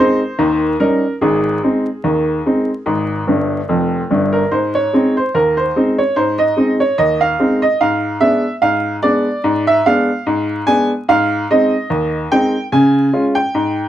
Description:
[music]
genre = ragtime piano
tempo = 73 BPM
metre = 2/4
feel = swing 55% on 16ths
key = Ab major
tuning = A4 = 440 Hz
[part]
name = bright upright piano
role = solo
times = 0.0-13.9 s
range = F1 to Ab5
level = -13 LUFS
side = equal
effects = none
[sound]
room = moderate studio ambience, RT60 0.5 s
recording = dark, warm production, vinyl crackle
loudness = -13 LUFS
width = side -12 dB against mid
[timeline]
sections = 0.0-4.5 A section; 4.5-13.9 B section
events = upright piano fill 3.3-4.5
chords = 0.4 Eb7; 1.2 Ab; 7.8 Abdim7; 11.1 Ab; 12.7 Db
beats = 0.39 | 1.21 2.04 | 2.86 3.69 | 4.52 5.34 | 6.17 6.99 | 7.81 8.63 | 9.45 10.27 | 11.09 11.90 | 12.72 13.54

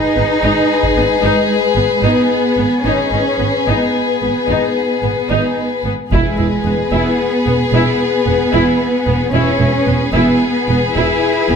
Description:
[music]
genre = cinematic, epic orchestral film score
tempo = 74 BPM (dotted quarters)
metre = 12/8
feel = straight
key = unclear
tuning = A4 = 440 Hz
[part]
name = rich studio violin section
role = melody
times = 0.0-11.6 s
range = B4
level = -24 LUFS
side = left 4 dB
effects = none
[part]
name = rich chamber violin section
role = second line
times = 0.0-11.6 s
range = G#4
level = -20 LUFS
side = left 5 dB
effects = none
[part]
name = mellow French horn section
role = sustained chords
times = 0.0-11.6 s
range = G#4 to B4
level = -20 LUFS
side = left 8 dB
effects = none
[part]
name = warm symphonic cello section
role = bass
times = 0.0-11.6 s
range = G#3 to E4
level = -18 LUFS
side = right 2 dB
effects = none
[part]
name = rich symphonic viola section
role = accompaniment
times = 0.2-11.6 s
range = B3 to E4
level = -21 LUFS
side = right 1 dB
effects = none
[part]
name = rich symphonic double bass section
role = bass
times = 0.2-11.6 s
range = E1 to G#1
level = -19 LUFS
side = right 3 dB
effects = none
[part]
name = taiko ensemble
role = drums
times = 0.8-1.1, 6.1-7.2 s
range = none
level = -20 LUFS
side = equal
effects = none
[sound]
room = moderate recital hall reverb, RT60 1.4 s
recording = none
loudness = -12 LUFS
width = side -6 dB against mid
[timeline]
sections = 0.0-11.6 A section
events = none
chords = 0.0 G#m; 6.1 E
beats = 0.43 1.23 2.04 | 2.85 3.67 4.49 5.30 | 6.12 6.93 7.74 8.54 | 9.34 10.15 10.97

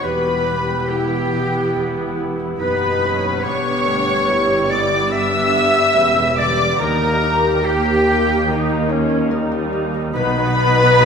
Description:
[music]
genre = cinematic, emotional film score for orchestra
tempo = 71 BPM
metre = 4/4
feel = rubato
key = unclear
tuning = A4 = 440 Hz
[part]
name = muted studio violin section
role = melody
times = 0.0-11.1 s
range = G5 to E6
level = -23 LUFS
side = left 2 dB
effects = none
[part]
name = bright small flute group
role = second line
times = 0.0-11.1 s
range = G4 to E5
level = -24 LUFS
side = left 1 dB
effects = none
[part]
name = clear oboe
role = second line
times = 0.0-11.1 s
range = G4 to E5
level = -24 LUFS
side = right 1 dB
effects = none
[part]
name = dark clarinet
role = second line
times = 0.0-11.1 s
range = G4 to E5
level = -25 LUFS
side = left 1 dB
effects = none
[part]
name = muted studio violin section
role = second line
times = 0.0-11.1 s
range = G4 to E5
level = -23 LUFS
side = left 2 dB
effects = none
[part]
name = muted studio viola section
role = accompaniment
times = 0.0-11.1 s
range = C#3 to G4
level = -23 LUFS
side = right 1 dB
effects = none
[part]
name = mellow French horn section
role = sustained chords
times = 0.0-11.1 s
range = A#3 to G4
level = -24 LUFS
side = equal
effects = none
[part]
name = concert harp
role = arpeggios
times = 0.0-11.1 s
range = E2 to B4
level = -28 LUFS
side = left 6 dB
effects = none
[part]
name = muted studio cello section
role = bass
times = 0.0-11.1 s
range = D#2 to B2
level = -28 LUFS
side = right 4 dB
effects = none
[part]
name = muted studio double bass section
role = bass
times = 0.0-11.1 s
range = E1 to D#2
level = -25 LUFS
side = right 3 dB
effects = none
[sound]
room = wet scoring stage reverb, RT60 1.6 s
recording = minimal, uncompressed stereo recording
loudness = -15 LUFS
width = side -6 dB against mid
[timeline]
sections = 0.0-11.1 A section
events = none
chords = 0.0 Em; 3.4 G; 6.8 D#; 10.2 B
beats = | 0.04 0.89 1.75 2.59 | 3.44 4.28 5.12 5.96 | 6.81 7.65 8.48 9.31 | 10.15 11.00

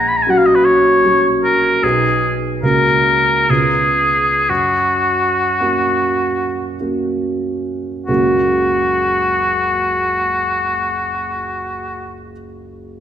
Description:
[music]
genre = classical, romantic duo for oboe and grand piano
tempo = 45-78 BPM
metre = 3/4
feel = rubato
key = F# major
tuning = A4 = 440 Hz
[part]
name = clear oboe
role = melody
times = 0.0-12.3 s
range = F#4 to B5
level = -15 LUFS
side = left 1 dB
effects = none
[part]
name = dark grand piano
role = accompaniment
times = 0.0-13.0 s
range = F#1 to G#4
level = -17 LUFS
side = right 1 dB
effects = none
[sound]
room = wet scoring stage reverb, RT60 1.7 s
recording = none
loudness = -13 LUFS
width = side -9 dB against mid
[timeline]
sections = 0.0-8.1 A section; 8.1-11.8 B section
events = slowing down 0.7-8.1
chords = 0.0 F#/A#; 1.8 G#m/B; 2.6 F#/C#; 3.5 C#7; 4.5 F#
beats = 0.26 1.04 | 1.83 2.63 3.49 | 4.49 5.60 6.78 | 8.07 9.31 10.55

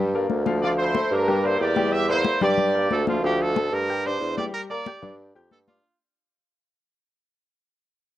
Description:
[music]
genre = latin, salsa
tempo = 184 BPM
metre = 4/4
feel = straight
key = unclear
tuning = A4 = 439 Hz
[part]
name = clear grand piano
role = accompaniment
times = 0.0-5.8 s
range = F3 to G6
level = -28 LUFS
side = left 4 dB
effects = none
[part]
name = warm bassoon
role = bass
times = 0.0-5.8 s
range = D2 to G2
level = -24 LUFS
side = right 2 dB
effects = none
[part]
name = congas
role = percussion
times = 0.1-5.8 s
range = none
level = -29 LUFS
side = left 6 dB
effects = none
[part]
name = clear trumpet section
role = melody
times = 0.6-3.0 s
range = D4 to E5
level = -23 LUFS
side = right 2 dB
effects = cassette tape
[part]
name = clear trumpet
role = melody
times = 2.9-6.0 s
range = F4 to D5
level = -28 LUFS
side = right 3 dB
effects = cassette tape
[sound]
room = light reverb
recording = home recording on cassette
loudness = -20 LUFS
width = side -13 dB against mid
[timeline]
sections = 0.0-3.2 A section; 3.2-5.8 B section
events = fade-out 3.2-5.8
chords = 0.0 Gm; 0.6 Dm7; 1.3 Em7b5; 2.6 Gm; 3.2 Dm; 3.9 G5; 4.5 Gm; 5.2 G5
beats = 0.29 | 0.62 0.94 1.27 1.60 | 1.92 2.25 2.58 2.90 | 3.23 3.56 3.88 4.21 | 4.53 4.86 5.19 5.51

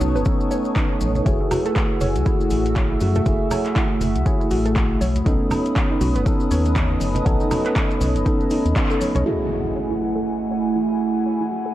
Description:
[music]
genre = deep house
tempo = 120 BPM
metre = 4/4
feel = swing 58% on 16ths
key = F# dorian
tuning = A4 = 442 Hz
[part]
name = airy breathy pad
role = sustained chords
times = 0.0-11.7 s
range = A3 to E6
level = -27 LUFS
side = equal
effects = chorus, sidechain pumping
[part]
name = warbly dusty pluck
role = arpeggios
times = 0.0-11.7 s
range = D#4 to D#5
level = -30 LUFS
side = right 2 dB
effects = chorus, sidechain pumping, analog delay
[part]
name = tine electric piano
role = stabs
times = 0.0-11.7 s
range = A3 to A4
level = -24 LUFS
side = equal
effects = phaser, sidechain pumping, low-pass filter, analog delay
[part]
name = organ-like FM bass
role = bass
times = 0.0-9.2 s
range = F#1 to F#2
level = -22 LUFS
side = equal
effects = sidechain pumping
[part]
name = congas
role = percussion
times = 0.0-9.2 s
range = none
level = -30 LUFS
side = right 2 dB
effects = none
[part]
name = maracas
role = percussion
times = 0.0-9.2 s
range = none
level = -41 LUFS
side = left 3 dB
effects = none
[part]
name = warbly tape-like pad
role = texture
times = 0.0-11.7 s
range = A3 to A5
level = -29 LUFS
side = right 2 dB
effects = chorus, built-in reverb, sidechain pumping
[part]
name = electronic kick drum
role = drums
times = 0.3-8.9 s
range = none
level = -22 LUFS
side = equal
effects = overdrive, vintage 12-bit sampler grit
[part]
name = deep house drum kit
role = drums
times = 0.8-9.2 s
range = handclaps, hi-hat, woodblock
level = -30 LUFS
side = equal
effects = overdrive, vintage 12-bit sampler grit
[part]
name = impact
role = sound effects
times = 9.3-11.3 s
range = none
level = -31 LUFS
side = equal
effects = none
[sound]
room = light reverb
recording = cassette tape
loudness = -18 LUFS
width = side -14 dB against mid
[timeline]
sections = 0.0-9.3 A section; 9.3-11.7 B section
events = band accent 8.8; impact 9.3-11.3; filter sweep on tine electric piano 9.3-11.7; filter sweep on synth pluck 9.3-11.7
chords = 0.0 B9; 1.3 F#m9; 5.0 B9; 9.3 F#m9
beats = 0.26 0.76 | 1.26 1.76 2.26 2.76 | 3.26 3.76 4.26 4.76 | 5.26 5.76 6.26 6.76 | 7.26 7.76 8.26 8.76 | 9.26 9.76 10.26 10.76 | 11.26

